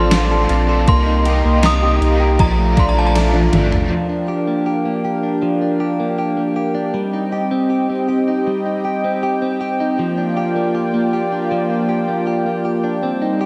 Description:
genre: dream pop.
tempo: 79 BPM.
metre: 4/4.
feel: straight.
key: Bb major.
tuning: A4 = 439 Hz.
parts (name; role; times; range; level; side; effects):
synth chime; melody; 0.0-3.2 s; A5 to Eb6; -24 LUFS; equal; ensemble chorus, dub echo.
overdriven electric guitar; accompaniment; 0.0-3.9 s; Bb2 to F4; -27 LUFS; equal; tremolo, ensemble chorus.
warm analog pad; sustained chords; 0.0-13.5 s; G3 to C6; -23 LUFS; equal; chorus.
direct-recorded clean electric guitar; arpeggios; 0.0-13.5 s; F3 to A4; -22 LUFS; equal; subtle chorus, dub echo.
round analog bass; bass; 0.0-3.9 s; A1 to C2; -19 LUFS; equal; none.
gated 80s digital drum machine; drums; 0.1-3.9 s; kick drum, ride cymbal, snare drum, tambourine, toms; -20 LUFS; equal; gated reverb, gated reverb snare, overdrive.
glockenspiel with soft plastic mallets; texture; 1.6-2.7 s; Bb5; -37 LUFS; equal; none.
room: moderate spring reverb, RT60 2.3 s.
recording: echo-heavy mix.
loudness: -17 LUFS.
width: mono.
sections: 0.0-3.9 A section; 3.9-13.5 B section.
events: drum fill 3.2-3.9.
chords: 0.0 Bbmaj9; 0.9 Cm7; 2.4 Bbmaj7; 3.9 Bb6; 7.0 Cm; 10.0 Bb6.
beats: 0.12 | 0.88 1.64 2.40 3.15 | 3.92 4.67 5.43 6.19 | 6.95 7.71 8.47 9.23 | 9.99 10.75 11.51 12.27 | 13.03.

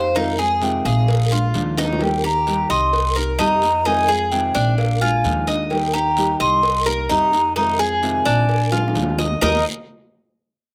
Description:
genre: latin, Cuban son and guajira.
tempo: 130 BPM.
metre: 4/4.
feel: straight.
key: Eb major.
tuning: A4 = 439 Hz.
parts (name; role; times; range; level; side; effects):
mellow hollow silver concert flute; melody; 0.0-9.6 s; Eb5 to C6; -22 LUFS; equal; slapback echo.
nylon-string guitar; accompaniment; 0.0-9.6 s; C3 to G4; -28 LUFS; equal; none.
Cuban tres; arpeggios; 0.0-9.6 s; D4 to Eb5; -25 LUFS; equal; none.
upright bass; bass; 0.0-9.6 s; Bb1 to F2; -25 LUFS; equal; none.
guiro; percussion; 0.1-9.5 s; none; -34 LUFS; equal; none.
cowbell and bongos; percussion; 0.2-9.5 s; none; -31 LUFS; equal; slapback echo.
room: little or no reverb.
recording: recorded outdoors, with no room sound.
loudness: -19 LUFS.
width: mono.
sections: 0.0-2.0 A section; 2.0-9.4 B section; 9.4-10.7 C section.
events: drum fill 1.8, 8.7-9.4.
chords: 0.2 Fm7; 1.1 Bb7; 2.0 Eb; 2.9 Cm7; 3.9 Fm7; 4.8 Bb7; 5.7 Eb; 6.6 Cm7; 7.6 Fm7; 8.5 Bb7; 9.4 Eb.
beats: | 0.16 0.62 1.08 1.54 | 2.01 2.47 2.93 3.39 | 3.86 4.32 4.78 5.25 | 5.71 6.17 6.63 7.10 | 7.56 8.03 8.49 8.95 | 9.42.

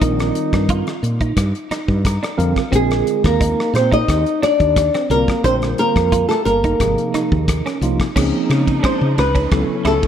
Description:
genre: electric jazz fusion.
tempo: 88 BPM.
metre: 4/4.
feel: straight.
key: unclear.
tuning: A4 = 439 Hz.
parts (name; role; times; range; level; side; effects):
flamenco guitar; melody; 0.0-10.1 s; Ab4 to Eb5; -18 LUFS; equal; wide subtle chorus.
breathy trombone; second line; 0.0-7.8 s; Ab3 to Eb4; -24 LUFS; left 1 dB; none.
bright tine electric piano; accompaniment; 0.0-10.1 s; C3 to Bb5; -23 LUFS; right 1 dB; medium stereo tremolo.
clean electric guitar; stabs; 0.0-10.1 s; C4 to F4; -27 LUFS; right 4 dB; ensemble chorus.
woody fretless electric bass; bass; 0.0-10.0 s; G1 to Db3; -19 LUFS; equal; none.
damped 70s drum kit; drums; 0.0-10.1 s; crash cymbal, hi-hat, kick drum, ride cymbal, rim click; -22 LUFS; equal; gated reverb.
dark chamber string section; sustained chords; 8.2-10.1 s; Db3 to Eb4; -26 LUFS; equal; none.
room: moderate plate reverb, RT60 2.4 s.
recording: bright 1980s-style digital production.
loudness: -15 LUFS.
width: side -9 dB against mid.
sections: 0.0-8.2 A section; 8.2-10.1 B section.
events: tine electric piano fill 1.7-2.7; nylon-string guitar solo 8.2-10.1.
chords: 0.0 Cm9/Bb; 2.7 Abadd9(#11)/Bb; 5.4 Bbadd9; 6.8 Ab69; 8.2 Dbmaj9; 9.5 A/C#.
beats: | 0.02 0.70 1.37 2.05 | 2.73 3.41 4.09 4.77 | 5.44 6.12 6.80 7.48 | 8.16 8.84 9.52.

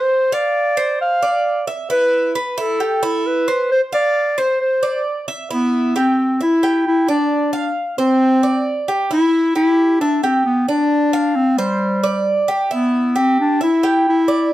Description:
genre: latin.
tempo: 133 BPM.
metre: 4/4.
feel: straight.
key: C major.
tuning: A4 = 440 Hz.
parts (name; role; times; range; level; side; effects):
warm clarinet; melody; 0.0-14.5 s; G3 to F5; -16 LUFS; left 1 dB; none.
Cuban tres; arpeggios; 0.0-14.5 s; E4 to F5; -21 LUFS; right 2 dB; none.
room: moderate studio reverb, RT60 0.7 s.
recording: none.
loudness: -15 LUFS.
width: side -15 dB against mid.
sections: 0.0-5.5 A section; 5.5-14.5 B section.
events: none.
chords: 0.1 Csus24; 1.9 Cmaj7; 3.7 Cadd9; 5.5 Cmaj7; 7.3 G7sus4; 9.1 Cadd9 (rootless); 10.9 G7sus4; 12.7 Cmaj9/B (rootless).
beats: | 0.09 0.54 0.99 1.45 | 1.90 2.35 2.80 3.25 | 3.70 4.15 4.60 5.05 | 5.50 5.95 6.40 6.85 | 7.30 7.75 8.21 8.66 | 9.11 9.56 10.01 10.46 | 10.91 11.36 11.81 12.26 | 12.71 13.16 13.61 14.06 | 14.51.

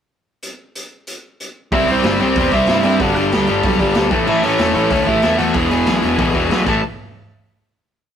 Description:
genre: punk rock.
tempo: 188 BPM.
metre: 4/4.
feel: straight.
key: unclear.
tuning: A4 = 439 Hz.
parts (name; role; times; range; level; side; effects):
raw garage drum kit; drums; 0.4-6.7 s; crash cymbal, hi-hat, kick drum, snare drum; -23 LUFS; equal; none.
dark smooth lead guitar; melody; 1.7-6.8 s; C4 to A5; -20 LUFS; right 2 dB; overdrive.
cranked stack guitar; riff; 1.7-6.8 s; E2 to C4; -17 LUFS; left 4 dB; overdrive.
distorted electric guitar; riff; 1.7-6.8 s; E2 to C4; -22 LUFS; right 8 dB; distortion.
overdriven picked electric bass; bass; 1.7-6.8 s; E1 to G2; -22 LUFS; right 1 dB; none.
room: light reverb.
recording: rough rehearsal-room recording.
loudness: -13 LUFS.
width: side -8 dB against mid.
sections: 0.4-1.7 pickup bar; 1.7-6.8 verse; 6.8-8.1 final hit.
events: drum fill 6.7.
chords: 0.4 N.C.; 1.7 C; 3.0 G; 4.1 A; 5.5 E; 6.7 A5; 6.8 N.C..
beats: | 0.44 0.76 1.08 1.40 | 1.72 2.04 2.36 2.68 | 3.00 3.32 3.64 3.96 | 4.28 4.59 4.91 5.23 | 5.55 5.87 6.19 6.50 | 6.82.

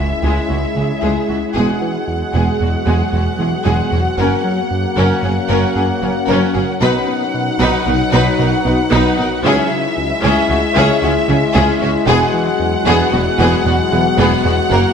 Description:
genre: cinematic, hybrid orchestral and electronic film score.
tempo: 114 BPM.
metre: 5/4.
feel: straight.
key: unclear.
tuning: A4 = 444 Hz.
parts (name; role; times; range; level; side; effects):
warm symphonic violin section; melody; 0.0-14.9 s; E5 to F#5; -21 LUFS; left 2 dB; none.
warm symphonic violin section; second line; 0.0-14.9 s; F#4 to B4; -21 LUFS; left 3 dB; none.
rich symphonic viola section; accompaniment; 0.0-14.9 s; G#3 to D#4; -22 LUFS; right 1 dB; none.
glassy FM pad; sustained chords; 0.0-14.9 s; F#3 to B4; -23 LUFS; left 1 dB; ensemble chorus, built-in reverb.
mellow French horn section; sustained chords; 0.0-14.9 s; F#3 to F#4; -21 LUFS; left 5 dB; none.
smooth synth bass; riff; 0.0-14.9 s; C#2 to B3; -20 LUFS; right 1 dB; none.
rich symphonic cello section; bass; 0.0-14.8 s; C#2 to C#3; -22 LUFS; right 3 dB; none.
rich symphonic double bass section; bass; 0.0-14.8 s; E1 to C#2; -21 LUFS; right 3 dB; none.
sub drop; sound effects; 0.0-1.5 s; none; -40 LUFS; equal; none.
room: moderate scoring stage reverb, RT60 1.7 s.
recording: none.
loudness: -13 LUFS.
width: side -7 dB against mid.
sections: 0.0-14.9 A section.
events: impact 0.0-1.5.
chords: 0.0 C#m; 1.5 Eadd9; 4.2 F#; 6.8 B; 9.4 C#m; 12.1 Eadd9.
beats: 0.49 1.02 | 1.55 2.07 2.60 3.12 3.65 | 4.18 4.70 5.23 5.76 6.28 | 6.81 7.33 7.86 8.39 8.91 | 9.44 9.97 10.49 11.02 11.55 | 12.07 12.60 13.12 13.65 14.18 | 14.70.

